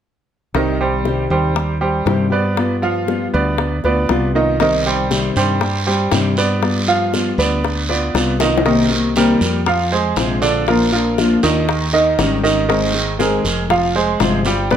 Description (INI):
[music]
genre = latin, Cuban son and guajira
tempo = 119 BPM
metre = 4/4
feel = straight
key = C harmonic minor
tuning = A4 = 440 Hz
[part]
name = nylon-string guitar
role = accompaniment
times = 0.5-14.8 s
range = B2 to Ab4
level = -19 LUFS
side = left 4 dB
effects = none
[part]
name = bright grand piano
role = arpeggios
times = 0.5-14.8 s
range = D3 to G5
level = -18 LUFS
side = right 3 dB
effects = none
[part]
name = woody fretless electric bass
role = bass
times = 0.5-14.8 s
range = F1 to G2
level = -21 LUFS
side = equal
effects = none
[part]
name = bongos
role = percussion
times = 0.5-14.8 s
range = none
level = -23 LUFS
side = left 8 dB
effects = none
[part]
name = guiro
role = percussion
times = 4.6-14.8 s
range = none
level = -25 LUFS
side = right 4 dB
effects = none
[sound]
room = light reverb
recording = none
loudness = -14 LUFS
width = side -9 dB against mid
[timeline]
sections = 0.6-8.7 A section; 8.7-14.8 B section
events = drum fill 8.4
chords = 0.6 Cm; 2.6 G7; 4.6 Cm; 6.6 G7; 8.7 Cm7; 9.7 Fm; 10.7 Bb; 11.7 Eb7; 12.7 Abadd9; 13.7 Fm